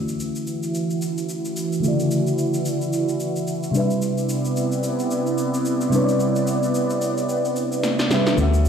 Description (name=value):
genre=amapiano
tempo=110 BPM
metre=4/4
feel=swing 58% on 16ths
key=unclear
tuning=A4 = 445 Hz
part: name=crystalline FM electric piano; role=accompaniment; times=0.0-8.7 s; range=C3 to E5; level=-23 LUFS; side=left 1 dB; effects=chorus, low-pass filter
part: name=lush unison pad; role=sustained chords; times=0.0-8.7 s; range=C3 to E5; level=-24 LUFS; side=right 2 dB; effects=chorus, phaser, low-pass filter
part: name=electronic shaker and snare drum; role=drums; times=0.1-8.7 s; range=none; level=-30 LUFS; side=equal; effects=overdrive
part: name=deep dub fingered electric bass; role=bass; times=8.4-8.7 s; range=D2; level=-17 LUFS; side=equal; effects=none
room=light reverb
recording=played on a big sound system in a bare room, stone room reverb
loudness=-20 LUFS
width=side -7 dB against mid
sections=0.0-8.7 A section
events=filter sweep 0.0-8.7; drum fill 7.8-8.4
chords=0.0 Dmaj9; 3.7 Cmaj9